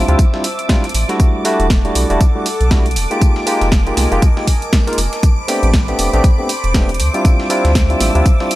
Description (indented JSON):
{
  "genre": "deep house",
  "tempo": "119 BPM",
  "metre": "4/4",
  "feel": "swing 58% on 16ths",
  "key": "A minor",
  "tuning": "A4 = 440 Hz",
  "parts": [
    { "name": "warm analog pad", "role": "sustained chords", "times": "0.0-8.6 s", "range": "A4 to E6", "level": "-24 LUFS", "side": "right 1 dB", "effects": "chorus, sidechain pumping" },
    { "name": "barky tine electric piano", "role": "stabs", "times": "0.0-8.5 s", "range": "G3 to Bb4", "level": "-19 LUFS", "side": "equal", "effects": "overdrive, sidechain pumping, tape echo" },
    { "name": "round analog bass", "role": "bass", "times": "0.0-8.2 s", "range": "E1 to D2", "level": "-16 LUFS", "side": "equal", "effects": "sidechain pumping" },
    { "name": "string machine, violins", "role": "texture", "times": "0.0-8.6 s", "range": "D6", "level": "-25 LUFS", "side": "equal", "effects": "ensemble chorus, sidechain pumping" },
    { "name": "house drum kit", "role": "drums", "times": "0.1-8.6 s", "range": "hi-hat, snare drum", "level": "-22 LUFS", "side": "right 1 dB", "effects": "none" },
    { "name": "electronic kick drum", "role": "drums", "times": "0.2-8.4 s", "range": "none", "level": "-12 LUFS", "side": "equal", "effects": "none" },
    { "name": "electronic tambourine and snare drum", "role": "drums", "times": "0.2-8.6 s", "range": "none", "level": "-28 LUFS", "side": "right 1 dB", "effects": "sidechain pumping on perc, high-pass filter on perc, high-pass filter on snare" }
  ],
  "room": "little or no reverb",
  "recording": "none",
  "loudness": "-12 LUFS",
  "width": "side -16 dB against mid",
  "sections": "0.0-8.6 A section",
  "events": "none",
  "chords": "0.0 Dm11; 1.2 Em11; 3.2 Fm11; 5.2 Am11; 7.0 Dm11"
}